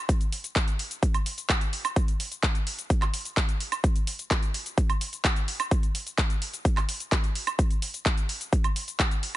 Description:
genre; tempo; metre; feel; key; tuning
EDM; 128 BPM; 4/4; straight; none; none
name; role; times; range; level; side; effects
big-room dance drum kit; drums; 0.1-9.3 s; handclaps, hi-hat, shaker, woodblock; -29 LUFS; right 1 dB; overdrive
electronic kick drum; drums; 0.1-9.1 s; none; -24 LUFS; equal; overdrive
room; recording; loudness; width
digital ambience; nothing above 10.9 kHz; -24 LUFS; side -15 dB against mid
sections
0.0-9.4 A section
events
none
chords
none

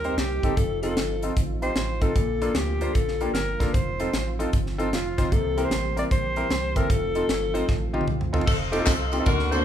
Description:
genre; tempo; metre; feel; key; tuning
uptempo gospel; 152 BPM; 4/4; swing 65% on 8ths; unclear; A4 = 441 Hz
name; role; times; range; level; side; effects
warm alto saxophone; melody; 0.0-8.1 s; F4 to D5; -28 LUFS; left 2 dB; none
clear baby grand piano; accompaniment; 0.0-9.6 s; Bb2 to C5; -29 LUFS; equal; none
percussive tonewheel organ; sustained chords; 0.0-9.6 s; D3 to C6; -35 LUFS; right 4 dB; slow rotary speaker
rubbery square bass; bass; 0.0-9.6 s; E1 to Eb2; -30 LUFS; equal; none
tight funk drum kit; drums; 0.0-9.6 s; crash cymbal, hi-hat, kick drum, ride cymbal, snare drum, toms; -26 LUFS; equal; none
clear saxophone section; melody; 8.5-9.6 s; C4 to C5; -27 LUFS; left 3 dB; none
tambourine and handclaps; percussion; 8.5-9.6 s; none; -33 LUFS; left 2 dB; none
room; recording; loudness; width
light reverb; band playing live in one room; -22 LUFS; side -10 dB against mid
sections
0.0-8.5 A section; 8.5-9.6 B section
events
drum fill 7.7-8.5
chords
0.0 Cm7; 0.6 F7; 2.2 Bbmaj7; 3.7 F7; 5.3 C7; 6.9 F7

